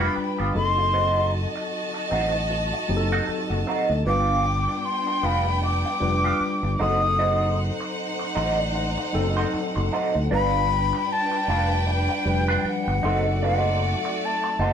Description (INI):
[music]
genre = soul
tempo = 77 BPM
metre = 4/4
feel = swing 58% on 16ths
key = unclear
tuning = A4 = 440 Hz
[part]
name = breathy jazz flute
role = melody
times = 0.0-14.7 s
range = F#5 to Eb6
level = -25 LUFS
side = left 3 dB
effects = none
[part]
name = rich studio violin section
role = second line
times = 0.0-14.7 s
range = A3 to A5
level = -29 LUFS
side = equal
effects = none
[part]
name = tine electric piano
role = accompaniment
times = 0.0-14.7 s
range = F3 to C6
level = -29 LUFS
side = left 2 dB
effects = medium stereo tremolo
[part]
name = electric guitar through a small old amp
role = riff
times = 0.0-14.7 s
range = B3 to C5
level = -27 LUFS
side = right 4 dB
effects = wah, harmonic tremolo
[part]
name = fingered electric bass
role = bass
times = 0.0-14.7 s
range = F1 to D2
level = -25 LUFS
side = equal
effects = none
[sound]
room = moderate studio reverb, RT60 0.6 s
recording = band playing live in one room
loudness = -21 LUFS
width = side -8 dB against mid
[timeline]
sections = 0.0-14.7 A section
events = tine electric piano fill 2.9-4.1, 8.0-10.3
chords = 0.0 G7; 0.6 D7b9/F# (rootless); 4.1 G7; 6.8 D7b9/F#; 10.3 G7; 13.0 D7b9/F#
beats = 0.17 | 0.95 1.73 2.51 3.29 | 4.07 4.85 5.63 6.41 | 7.19 7.97 8.74 9.53 | 10.30 11.09 11.87 12.65 | 13.43 14.21